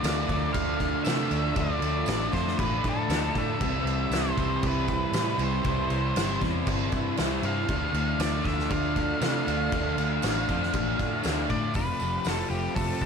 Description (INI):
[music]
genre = rock, shoegaze and dream pop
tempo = 118 BPM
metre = 4/4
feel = straight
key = unclear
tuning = A4 = 445 Hz
[part]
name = octave-fuzz lead guitar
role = melody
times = 0.0-13.1 s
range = G4 to F5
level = -31 LUFS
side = equal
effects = distortion, tape echo
[part]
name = picked plugged-in twelve-string acoustic guitar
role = arpeggios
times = 0.0-13.1 s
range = E3 to A4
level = -36 LUFS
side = right 1 dB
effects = ensemble chorus, tape echo
[part]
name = crunchy overdriven guitar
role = riff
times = 0.0-11.7 s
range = C3 to D4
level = -35 LUFS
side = equal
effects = none
[part]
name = direct-recorded clean electric guitar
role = riff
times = 0.0-13.1 s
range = C3 to G4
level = -35 LUFS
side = right 10 dB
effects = reverse reverb
[part]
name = thick fuzz guitar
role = riff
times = 0.0-13.1 s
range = F2 to D4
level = -33 LUFS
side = left 9 dB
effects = distortion, lush chorus
[part]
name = vintage muted fingered electric bass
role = bass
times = 0.0-13.1 s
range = F1 to C3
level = -31 LUFS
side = equal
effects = none
[part]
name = loose indie drum kit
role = drums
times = 0.0-13.1 s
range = crash cymbal, hi-hat, kick drum, snare drum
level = -30 LUFS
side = equal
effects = none
[part]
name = tambourine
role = percussion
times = 0.0-13.1 s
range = none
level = -47 LUFS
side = right 14 dB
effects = none
[sound]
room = moderate huge ambient reverb, RT60 7.6 s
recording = dreamy mix soaked in reverb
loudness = -24 LUFS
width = side -6 dB against mid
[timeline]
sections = 0.0-11.8 A section; 11.8-13.1 B section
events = none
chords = 0.0 Dm; 3.6 C; 7.7 Dm; 11.8 Fadd9